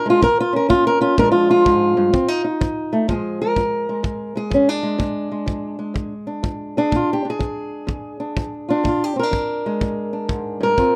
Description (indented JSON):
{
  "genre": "acoustic country blues, solo or duo",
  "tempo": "125 BPM",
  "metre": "4/4",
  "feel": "swing 66% on 8ths",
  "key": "Bb mixolydian",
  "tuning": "A4 = 444 Hz",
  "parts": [
    { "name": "fingerpicked old ladder-braced acoustic guitar", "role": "melody", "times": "0.0-11.0 s", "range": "F2 to Bb4", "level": "-20 LUFS", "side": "equal", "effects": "none" },
    { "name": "kick drum", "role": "drums", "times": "0.2-10.9 s", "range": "none", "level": "-27 LUFS", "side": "equal", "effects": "none" }
  ],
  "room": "moderate booth ambience, RT60 0.2 s",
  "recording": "none",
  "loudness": "-20 LUFS",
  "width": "mono",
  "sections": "0.0-3.1 A section; 3.1-11.0 B section",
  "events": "steel-string acoustic guitar solo 0.0-3.1",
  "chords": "0.2 Eb5; 1.2 Bb7; 2.1 F7(no3); 3.1 Bb7"
}